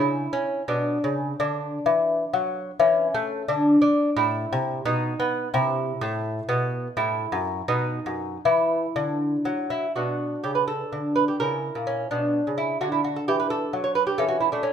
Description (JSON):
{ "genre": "classical, baroque-style dance for lute", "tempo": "78-89 BPM (dotted quarters)", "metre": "6/8", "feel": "rubato", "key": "B minor from 10.0 s", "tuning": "A4 = 440 Hz", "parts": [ { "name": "lute", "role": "solo", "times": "0.0-14.7 s", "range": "F#2 to C#5", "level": "-22 LUFS", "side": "equal", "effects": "none" } ], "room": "wet large studio reverb, RT60 1.2 s", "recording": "band playing live in one room", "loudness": "-22 LUFS", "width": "side -8 dB against mid", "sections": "0.0-10.0 A section; 10.0-14.7 A section", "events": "none", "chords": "0.0 C#m; 0.7 Bm; 1.4 D; 2.8 A/E; 3.5 N.C.; 4.2 Am; 4.9 B; 5.5 C; 7.0 F#m7; 7.7 B; 8.4 Dadd9; 10.0 Bm; 11.4 A#dim; 12.1 Bm; 12.8 D; 14.2 A/E", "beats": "0.70 | 1.41 2.11 | 2.80 3.48 | 4.17 4.86 | 5.55 6.25 | 6.96 7.68 | 8.44 9.20 | 9.96 10.68 | 11.39 12.11 | 12.81 13.51 | 14.19" }